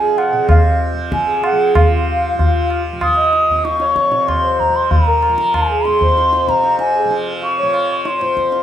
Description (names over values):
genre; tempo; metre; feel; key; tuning
indian classical, Hindustani; 95 BPM; 4/4; straight; F raga bhairavi; A4 = 440 Hz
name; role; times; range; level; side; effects
mellow bansuri; melody; 0.0-8.6 s; F5 to Eb6+20c; -16 LUFS; equal; none
hand-pumped harmonium; second line; 0.0-8.6 s; F4 to Eb5; -19 LUFS; equal; none
tanpura; drone; 0.0-8.6 s; F2 to F3; -24 LUFS; right 1 dB; none
tabla; percussion; 0.2-8.6 s; none; -18 LUFS; equal; none
room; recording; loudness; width
moderate large studio reverb, RT60 1.1 s; band playing live in one room; -13 LUFS; side -10 dB against mid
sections
0.0-1.8 A section; 1.8-8.6 B section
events
none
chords
none